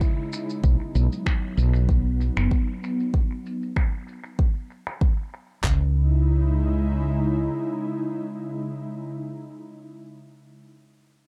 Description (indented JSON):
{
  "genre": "organic downtempo",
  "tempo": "96 BPM",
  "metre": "4/4",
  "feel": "swing 53% on 16ths",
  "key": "C# minor",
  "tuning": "A4 = 440 Hz",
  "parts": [
    { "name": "ethereal airy pad", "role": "sustained chords", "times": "0.0-8.9 s", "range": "C#3 to E4", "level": "-31 LUFS", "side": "equal", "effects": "ensemble chorus, built-in reverb, sidechain pumping" },
    { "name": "deep house drum kit", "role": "drums", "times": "0.0-5.8 s", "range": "handclaps, kick drum", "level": "-24 LUFS", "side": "equal", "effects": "none" },
    { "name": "electronic shaker and finger snaps", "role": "drums", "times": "0.0-5.6 s", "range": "none", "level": "-38 LUFS", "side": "equal", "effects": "low-pass filter on perc, low-pass filter on snare, low-pass filter on room, analog delay" },
    { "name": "woody fretless electric bass", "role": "bass", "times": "0.6-7.5 s", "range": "F#1 to C#2", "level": "-23 LUFS", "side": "equal", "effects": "tube saturation, sidechain pumping" }
  ],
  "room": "light reverb, digital ambience",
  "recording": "echo-heavy mix",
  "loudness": "-24 LUFS",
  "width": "mono",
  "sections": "0.0-5.6 A section; 5.6-8.1 B section",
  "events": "filter sweep on drum 0.0-5.6; filter sweep on ambient pad 0.0-3.1",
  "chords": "0.0 C#m; 0.6 B; 3.1 N.C.; 5.6 C#m"
}